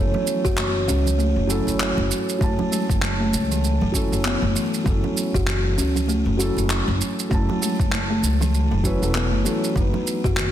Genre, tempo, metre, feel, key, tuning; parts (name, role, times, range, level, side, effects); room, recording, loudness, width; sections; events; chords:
organic downtempo; 98 BPM; 4/4; swing 59% on 16ths; F# minor; A4 = 440 Hz
felt-muted upright piano; accompaniment; 0.0-10.5 s; F#3 to A5; -27 LUFS; right 1 dB; sidechain pumping, ping-pong delay
buzzing kalimba; arpeggios; 0.0-10.5 s; D#3 to F#4; -25 LUFS; left 2 dB; ping-pong delay
upright bass; bass; 0.0-10.5 s; E1 to C#2; -23 LUFS; equal
bronze singing bowl; texture; 0.0-10.5 s; C#5; -33 LUFS; right 6 dB
congas; percussion; 0.1-10.5 s; -33 LUFS; right 4 dB
deep house drum kit; drums; 0.3-10.5 s; handclaps, shaker, toms; -27 LUFS; right 2 dB; overdrive
electronic kick drum; drums; 0.4-10.3 s; -24 LUFS; equal; overdrive
moderate scoring stage reverb, RT60 1.9 s, small room ambience; dense, heavily limited modern master; -19 LUFS; side -11 dB against mid
0.0-10.5 A section
0.0 F#m7; 9.8 B/F#